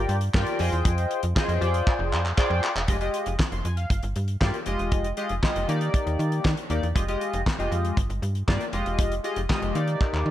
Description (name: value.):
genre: early-eighties boogie funk.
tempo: 118 BPM.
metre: 4/4.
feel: straight.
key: F dorian.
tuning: A4 = 439 Hz.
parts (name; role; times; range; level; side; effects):
chorused polysynth; accompaniment; 0.0-10.3 s; Ab3 to C6; -28 LUFS; left 1 dB; none.
slap-like FM bass; bass; 0.0-10.3 s; E1 to Eb3; -26 LUFS; equal; none.
damped 70s drum kit; drums; 0.1-10.3 s; handclaps, hi-hat, kick drum, snare drum; -26 LUFS; equal; gated reverb.
room: light reverb, small room reverb.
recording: none.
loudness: -23 LUFS.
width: side -12 dB against mid.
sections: 0.0-2.9 A section; 2.9-10.3 B section.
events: drum fill 1.9-2.9, 10.0-10.3.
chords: 0.0 Gm7; 0.6 Fm9; 1.6 Fm69; 2.9 Fm9; 3.9 Gm7; 4.7 Fm9; 5.7 Ebmaj7; 7.0 Fm9; 8.0 Gm7; 8.7 Fm9; 9.7 Ebmaj7.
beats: 0.34 | 0.85 1.36 1.87 2.38 | 2.88 3.39 3.90 4.41 | 4.92 5.43 5.94 6.44 | 6.95 7.46 7.97 8.48 | 8.99 9.49 10.00.